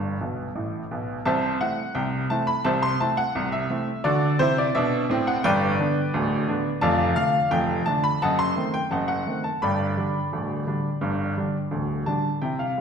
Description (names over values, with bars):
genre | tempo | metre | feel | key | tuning
ragtime piano | 86 BPM | 2/4 | straight | G major | A4 = 440 Hz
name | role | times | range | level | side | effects
clear upright piano | solo | 0.0-12.8 s | D1 to C6 | -22 LUFS | equal | none
room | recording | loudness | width
wet recital hall reverb, RT60 1.6 s | recorded in a church or concert hall | -22 LUFS | side -6 dB against mid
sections
0.0-1.3 A section; 1.3-12.4 B section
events
upright piano fill 0.2-1.3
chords
0.0 G; 1.3 Am/C; 4.0 D7; 5.4 G; 6.8 Dm/F; 8.2 F#dim7; 9.6 G